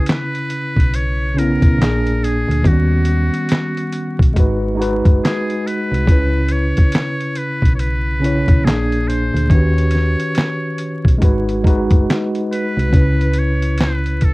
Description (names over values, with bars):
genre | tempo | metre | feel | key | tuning
lo-fi hip hop | 70 BPM | 4/4 | swing 63% on 16ths | C# minor | A4 = 442 Hz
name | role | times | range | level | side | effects
trumpet with metal mute | melody | 0.0-14.3 s | F#4 to C#5 | -24 LUFS | equal | low-pass filter, cassette tape, plate reverb
mellow tine electric piano | accompaniment | 0.0-14.3 s | A#2 to C#5 | -19 LUFS | equal | medium stereo tremolo, cassette tape, low-pass filter
dusty soul sampler-style drum kit | drums | 0.1-14.3 s | handclaps, hi-hat, kick drum, snare drum | -14 LUFS | equal | cassette tape
solid FM bass | bass | 0.8-14.3 s | F#1 to D#2 | -18 LUFS | equal | none
room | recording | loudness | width
light reverb | home recording on cassette, vinyl crackle | -14 LUFS | side -22 dB against mid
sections
0.0-12.9 A section; 12.9-14.3 B section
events
none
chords
0.0 C#m7; 1.8 A#7; 2.6 D#7alt; 4.4 G#m7; 6.1 C#m7; 8.6 A#7; 9.5 D#7alt; 11.2 G#m7; 12.9 C#m7